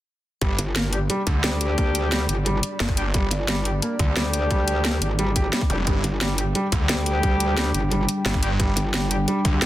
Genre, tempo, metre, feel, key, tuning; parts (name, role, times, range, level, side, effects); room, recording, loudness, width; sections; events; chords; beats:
dark technical drum and bass; 176 BPM; 4/4; straight; A4 = 439 Hz
dark analog pad; sustained chords; 1.2-9.7 s; G3 to G5; -31 LUFS; right 1 dB; chorus, sidechain pumping
felt-muted upright piano; arpeggios; 0.4-9.7 s; G3 to G4; -29 LUFS; equal; vintage 12-bit sampler grit, sidechain pumping, tape echo
snarling distorted saw bass; bass; 0.4-9.6 s; F1 to D2; -25 LUFS; equal; distortion, tube saturation
drum and bass drum kit; drums; 0.4-9.7 s; hi-hat, snare drum; -25 LUFS; equal; overdrive
electronic kick drum; drums; 0.4-9.5 s; -23 LUFS; equal; overdrive
metallic wobble bass; bass; 0.6-9.7 s; G1 to D2; -24 LUFS; equal; distortion, chorus
mellow brass ensemble; stabs; 0.9-9.7 s; G3 to G4; -29 LUFS; left 2 dB; vintage 12-bit sampler grit, tape echo
zap; sound effects; 5.7-5.8 s; -34 LUFS; equal
little or no reverb; dense, heavily limited modern master; -20 LUFS; side -14 dB against mid
0.4-9.7 A section
0.4 G5
| 0.41 0.76 1.10 1.44 | 1.78 2.12 2.46 2.80 | 3.14 3.48 3.82 4.17 | 4.51 4.85 5.19 5.53 | 5.87 6.21 6.55 6.89 | 7.23 7.57 7.92 8.26 | 8.60 8.94 9.28 9.62